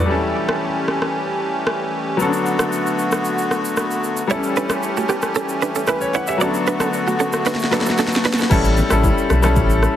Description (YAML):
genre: afrobeats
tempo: 114 BPM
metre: 4/4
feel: straight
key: unclear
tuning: A4 = 439 Hz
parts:
  - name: bright grand piano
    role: accompaniment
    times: 0.0-10.0 s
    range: F#3 to F#5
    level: -21 LUFS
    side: left 3 dB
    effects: none
  - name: accordion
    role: sustained chords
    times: 0.0-8.5 s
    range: D3 to G4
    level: -23 LUFS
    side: equal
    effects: light tremolo tuning
  - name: direct-recorded clean electric guitar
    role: riff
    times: 0.0, 4.3-8.5 s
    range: A3 to E5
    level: -24 LUFS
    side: right 6 dB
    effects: tremolo, tape echo
  - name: afro-pop drum kit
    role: drums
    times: 0.5-10.0 s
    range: crash cymbal, kick drum, rim click, shaker, snare drum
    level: -22 LUFS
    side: equal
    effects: none
  - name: saturated sub bass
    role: bass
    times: 8.5-9.9 s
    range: A1 to B1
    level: -17 LUFS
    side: equal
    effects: none
  - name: congas and bongos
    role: percussion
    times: 8.5-9.7 s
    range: none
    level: -28 LUFS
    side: left 4 dB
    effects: none
room: light reverb, digital ambience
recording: heavily compressed radio sound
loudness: -16 LUFS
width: side -11 dB against mid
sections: 0.1-8.5 A section; 8.5-10.0 B section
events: drum fill 7.5-8.5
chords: 0.1 A7; 2.2 Bm7; 4.3 A7; 6.4 Bm7; 8.5 A7